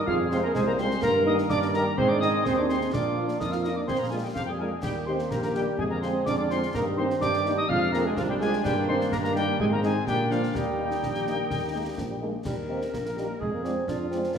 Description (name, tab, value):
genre	military-style march for wind band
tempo	126 BPM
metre	2/4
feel	straight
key	Eb major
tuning	A4 = 440 Hz
part	mellow trumpet section	melody	0.0-14.2 s	F4 to F5	-35 LUFS	equal	none
part	warm woodwind section	second line	0.0-14.4 s	C4 to C5	-34 LUFS	left 1 dB	none
part	piccolo	second line	0.1-12.2 s	F5 to F6	-32 LUFS	left 3 dB	none
part	warm euphonium	second line	0.1-14.4 s	F3 to F4	-28 LUFS	right 3 dB	none
part	mellow tuba	bass	0.1-14.4 s	Bb1 to Bb2	-31 LUFS	right 1 dB	none
part	concert bass drum, concert snare drum and clash cymbals	drums	0.1-14.4 s	none	-36 LUFS	left 2 dB	none
part	mellow French horn section	accompaniment	0.3-14.2 s	G3 to G4	-36 LUFS	left 4 dB	none
part	clear trombone section	sustained chords	0.3-12.2 s	C3 to C4	-33 LUFS	right 2 dB	none
room	wet scoring stage reverb, RT60 1.8 s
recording	studio reverb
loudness	-24 LUFS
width	side -7 dB against mid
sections	0.0-12.4 A section; 12.4-14.4 A section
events	none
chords	0.1 Fm; 1.0 Eb/G; 2.0 Ab; 2.9 Bb; 4.8 Eb; 5.8 Ddim/F; 6.7 Eb/G; 7.7 Fm; 8.6 Eb/G; 9.6 Ab; 10.1 Bb; 10.5 Eb; 13.4 Ddim/F